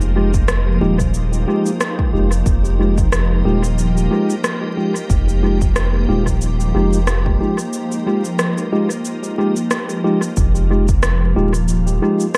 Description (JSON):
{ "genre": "ambient dub", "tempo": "91 BPM", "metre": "4/4", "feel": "swing 57% on 16ths", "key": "F minor", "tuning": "A4 = 440 Hz", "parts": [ { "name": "soft additive organ-like pad", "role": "sustained chords", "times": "0.0-12.4 s", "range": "F3 to C5", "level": "-25 LUFS", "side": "equal", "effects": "ensemble chorus, built-in reverb" }, { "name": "soft dub sub bass", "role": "bass", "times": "0.0-12.0 s", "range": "Eb1 to F1", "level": "-19 LUFS", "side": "equal", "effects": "none" }, { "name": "electronic cabasa and rim click", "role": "drums", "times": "0.0-12.4 s", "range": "none", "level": "-26 LUFS", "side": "equal", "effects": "overdrive, dub echo" }, { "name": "mellow tine electric piano", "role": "stabs", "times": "0.2-12.2 s", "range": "Ab3 to G4", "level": "-23 LUFS", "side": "equal", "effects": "low-pass filter, dub echo" }, { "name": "electronic kick drum", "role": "drums", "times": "0.3-11.0 s", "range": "none", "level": "-22 LUFS", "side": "equal", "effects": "none" } ], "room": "light reverb, digital ambience", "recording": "echo-heavy mix, vinyl crackle", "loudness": "-17 LUFS", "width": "mono", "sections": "0.0-10.4 A section; 10.4-12.4 A section", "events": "break 7.7-10.4; filter sweep on tine electric piano 10.4-12.4", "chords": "0.0 Fm9", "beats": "0.48 1.14 1.80 | 2.46 3.12 3.78 4.44 | 5.10 5.76 6.42 7.08 | 7.74 8.39 9.05 9.71 | 10.37 11.03 11.69 12.35" }